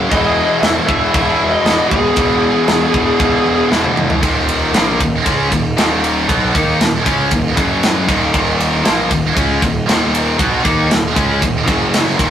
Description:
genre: heavy metal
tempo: 117 BPM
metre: 4/4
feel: straight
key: Eb phrygian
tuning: A4 = 440 Hz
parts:
  - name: heavy high-gain guitar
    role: riff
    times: 0.0-12.3 s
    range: Eb2 to Eb4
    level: -18 LUFS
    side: right 4 dB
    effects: distortion
  - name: tight distorted guitar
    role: riff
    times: 0.0-12.3 s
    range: Eb2 to Eb4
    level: -18 LUFS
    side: left 4 dB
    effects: distortion
  - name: bluesy overdriven lead guitar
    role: melody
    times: 0.1-3.7 s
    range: G#4 to E5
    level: -16 LUFS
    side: left 2 dB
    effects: distortion
  - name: high-gain lead guitar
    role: second line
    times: 0.1-3.7 s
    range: B3 to G#4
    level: -22 LUFS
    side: right 2 dB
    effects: distortion
  - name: fuzz picked electric bass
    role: bass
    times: 0.1-12.3 s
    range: Eb1 to Eb2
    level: -21 LUFS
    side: equal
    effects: overdrive
  - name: tight metal drum kit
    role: drums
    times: 0.1-12.3 s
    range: crash cymbal, kick drum, ride cymbal, snare drum, toms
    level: -17 LUFS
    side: right 1 dB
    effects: none
room: moderate studio reverb, RT60 0.6 s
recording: rough rehearsal-room recording, warm saturation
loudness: -12 LUFS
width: side -10 dB against mid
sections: 0.0-4.2 A section; 4.2-12.3 B section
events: drum fill 3.7-4.2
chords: 0.1 E; 4.2 Ebm; 7.6 Gb5; 8.1 Ebm; 11.7 Gb5

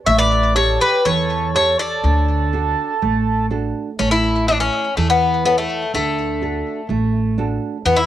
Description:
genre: greek folk, Greek bouzouki band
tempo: 123 BPM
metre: 4/4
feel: straight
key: D major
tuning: A4 = 440 Hz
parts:
  - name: Greek bouzouki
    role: melody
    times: 0.1-8.1 s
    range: A3 to E5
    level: -17 LUFS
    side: left 3 dB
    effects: cassette tape, plate reverb, tape echo
  - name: mellow accordion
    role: second line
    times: 0.1-3.5 s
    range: G4 to C#5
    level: -23 LUFS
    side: right 6 dB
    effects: cassette tape, plate reverb
  - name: nylon-string guitar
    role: accompaniment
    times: 0.1-8.1 s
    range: D3 to C#5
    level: -23 LUFS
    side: right 6 dB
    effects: cassette tape, plate reverb
  - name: upright bass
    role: bass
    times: 0.1-8.1 s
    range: A1 to E2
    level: -21 LUFS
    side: equal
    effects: none
room: moderate small room reverb, RT60 0.5 s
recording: home recording on cassette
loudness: -16 LUFS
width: side -12 dB against mid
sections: 0.0-4.0 A section; 4.0-8.1 B section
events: none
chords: 0.1 A7; 2.0 D; 4.0 A; 5.9 D

